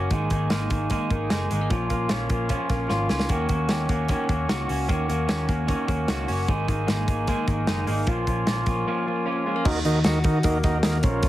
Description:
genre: jangly indie pop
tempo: 151 BPM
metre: 4/4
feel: straight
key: Eb minor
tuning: A4 = 439 Hz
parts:
  - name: electric guitar through a small old amp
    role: accompaniment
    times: 0.0-9.7 s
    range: Bb2 to Ab4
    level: -27 LUFS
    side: right 2 dB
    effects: none
  - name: direct-recorded clean electric guitar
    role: arpeggios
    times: 0.0-11.3 s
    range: Eb3 to Gb4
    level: -29 LUFS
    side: left 4 dB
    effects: digital delay
  - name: vintage muted picked electric bass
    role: bass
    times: 0.0-11.3 s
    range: Gb1 to Eb3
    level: -27 LUFS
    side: equal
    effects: none
  - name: modern studio drum kit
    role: drums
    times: 0.1-11.3 s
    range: crash cymbal, hi-hat, kick drum, snare drum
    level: -26 LUFS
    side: equal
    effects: none
  - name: overdriven combo organ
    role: accompaniment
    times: 9.7-11.3 s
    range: Db4 to Eb5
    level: -26 LUFS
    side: right 2 dB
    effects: none
room: light reverb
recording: heavily compressed radio sound, vinyl crackle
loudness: -22 LUFS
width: side -14 dB against mid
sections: 0.0-9.7 A section; 9.7-11.3 B section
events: drum fill 2.9-3.3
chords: 0.1 Absus2; 1.7 Bbm; 3.3 Ebm7; 6.5 Absus2; 8.1 Bbm; 9.7 Ebm

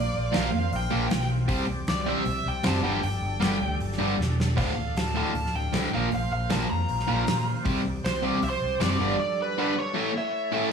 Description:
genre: hard rock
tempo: 156 BPM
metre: 4/4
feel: straight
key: unclear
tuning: A4 = 440 Hz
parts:
  - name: nasal lead guitar with a parked wah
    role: melody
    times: 0.0-10.7 s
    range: B4 to Bb5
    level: -30 LUFS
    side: right 1 dB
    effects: overdrive, tape echo
  - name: overdriven tonewheel organ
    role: sustained chords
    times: 0.0-10.7 s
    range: G3 to F5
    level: -37 LUFS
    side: equal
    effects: chorus vibrato, slow rotary speaker
  - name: overdriven picked electric bass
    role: bass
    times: 0.0-9.1 s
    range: D1 to Bb2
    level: -29 LUFS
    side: equal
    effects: none
  - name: distorted electric guitar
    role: riff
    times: 0.3-10.7 s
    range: D2 to C4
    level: -28 LUFS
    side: equal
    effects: overdrive
  - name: huge arena drum kit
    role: drums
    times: 0.3-8.9 s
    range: hi-hat, kick drum, snare drum, splash cymbal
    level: -31 LUFS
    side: equal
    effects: none
  - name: high-gain lead guitar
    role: second line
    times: 10.2-10.7 s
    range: C#5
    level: -36 LUFS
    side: right 3 dB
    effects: distortion
room: light reverb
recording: none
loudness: -24 LUFS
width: side -6 dB against mid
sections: 0.0-10.7 A section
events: drum fill 4.2-4.6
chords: 0.0 Bb; 1.5 C; 2.8 G5; 4.6 Dm; 5.9 Bb5; 7.6 C5; 9.0 G5; 10.0 A

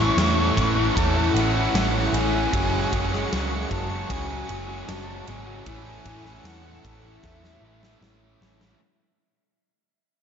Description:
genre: rock, shoegaze and dream pop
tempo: 76 BPM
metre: 4/4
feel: straight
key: A major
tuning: A4 = 440 Hz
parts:
  - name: mellow silver concert flute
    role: melody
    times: 0.0-8.4 s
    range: E5 to C#6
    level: -30 LUFS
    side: left 2 dB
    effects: ping-pong delay
  - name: lush unison pad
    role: sustained chords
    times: 0.0-8.8 s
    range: G#3 to C#6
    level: -35 LUFS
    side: right 2 dB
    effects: chorus
  - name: distorted electric guitar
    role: riff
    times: 0.0-8.8 s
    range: F#2 to A3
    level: -32 LUFS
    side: equal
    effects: overdrive
  - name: overdriven electric guitar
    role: riff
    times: 0.0-8.8 s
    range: A2 to F#4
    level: -29 LUFS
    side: right 8 dB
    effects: reverse reverb
  - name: overdriven semi-hollow guitar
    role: riff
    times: 0.0-8.8 s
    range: A2 to F#4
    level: -29 LUFS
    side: left 9 dB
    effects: ensemble chorus
  - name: vintage muted picked electric bass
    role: bass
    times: 0.0-8.7 s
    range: F#1 to E2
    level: -28 LUFS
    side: equal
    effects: none
  - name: huge arena drum kit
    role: drums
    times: 0.2-8.8 s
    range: kick drum, ride cymbal, snare drum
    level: -29 LUFS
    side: equal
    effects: none
room: wet plate reverb, RT60 2.4 s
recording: dreamy mix soaked in reverb, nothing above 7.6 kHz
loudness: -20 LUFS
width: side -7 dB against mid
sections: 0.0-8.8 A section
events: fade-out 0.0-8.8; drum fill 7.2-8.8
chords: 0.0 A; 2.5 F#sus2; 5.7 A6

